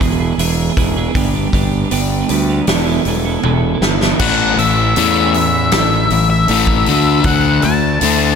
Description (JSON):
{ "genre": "quiet-loud alternative rock", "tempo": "79 BPM", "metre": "4/4", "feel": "straight", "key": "A mixolydian", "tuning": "A4 = 440 Hz", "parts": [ { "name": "twelve-string electric guitar", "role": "arpeggios", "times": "0.0-8.4 s", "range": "A2 to A4", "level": "-19 LUFS", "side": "right 7 dB", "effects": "digital delay" }, { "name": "fuzz fingered electric bass", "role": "bass", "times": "0.0-8.4 s", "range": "E1 to E2", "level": "-18 LUFS", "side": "equal", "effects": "overdrive" }, { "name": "big rock drum kit", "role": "drums", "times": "0.0-8.2 s", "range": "crash cymbal, hi-hat, kick drum, snare drum, toms", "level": "-18 LUFS", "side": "equal", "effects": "none" }, { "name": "octave-fuzz lead guitar", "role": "melody", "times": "4.2-8.4 s", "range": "E5 to A5", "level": "-16 LUFS", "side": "left 2 dB", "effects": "distortion, slapback echo, digital delay" }, { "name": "crunchy overdriven guitar", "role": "riff", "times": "4.2-8.4 s", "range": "A2 to D4", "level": "-16 LUFS", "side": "left 10 dB", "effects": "none" } ], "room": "moderate concert hall reverb, RT60 2.2 s", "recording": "big arena sound", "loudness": "-12 LUFS", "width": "side -6 dB against mid", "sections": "0.0-4.2 A section; 4.2-8.4 B section", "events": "drum fill 3.4-4.2", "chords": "0.0 E; 1.2 G; 2.7 Esus4; 4.2 A; 6.9 Dadd9" }